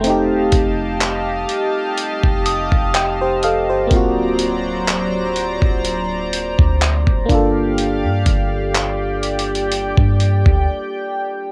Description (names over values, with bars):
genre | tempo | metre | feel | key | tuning
contemporary R&B | 62 BPM | 4/4 | swing 54% on 16ths | unclear | A4 = 440 Hz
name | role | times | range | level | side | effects
FM electric piano | accompaniment | 0.0-11.5 s | A3 to G5 | -23 LUFS | equal | chorus
chorused pulse-width pad | sustained chords | 0.0-11.5 s | F#3 to A#5 | -24 LUFS | equal | none
soft 808-style bass | bass | 0.0-10.7 s | D1 to G2 | -24 LUFS | equal | none
dusty soul sampler-style drum kit | drums | 0.0-10.7 s | handclaps, hi-hat, kick drum | -19 LUFS | equal | cassette tape
soft synth bell | texture | 0.0-4.4 s | Eb6 to A6 | -29 LUFS | equal | chorus, analog delay
room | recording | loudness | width
light reverb | home recording on cassette | -18 LUFS | mono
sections
0.0-11.5 A section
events
FM electric piano fill 2.5-3.9; break 10.7-11.5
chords
0.0 F9; 3.9 D7alt; 7.3 Gm7